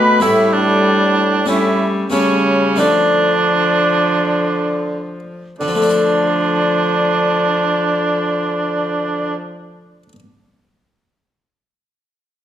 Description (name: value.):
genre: classical, renaissance-style consort dance.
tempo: 80-97 BPM.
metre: 4/4.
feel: straight.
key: D minor.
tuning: A4 = 440 Hz.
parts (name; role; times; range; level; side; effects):
mellow alto recorder; melody; 0.0-9.3 s; C#5 to B5; -22 LUFS; left 4 dB; none.
clear cor anglais; second line; 0.0-9.3 s; C#4 to B4; -17 LUFS; right 4 dB; none.
harpsichord; accompaniment; 0.0-10.2 s; A2 to A4; -21 LUFS; left 2 dB; none.
rich viola; accompaniment; 0.0-9.4 s; F3 to A3; -21 LUFS; left 2 dB; none.
warm bassoon; bass; 0.0-9.3 s; A2 to D3; -21 LUFS; equal; none.
room: wet recital hall reverb, RT60 1.5 s.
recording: none.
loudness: -13 LUFS.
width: side -10 dB against mid.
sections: 0.0-5.6 A section; 5.6-8.6 B section.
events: slowing down 0.0-5.6.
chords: 0.2 A7; 2.8 Dm.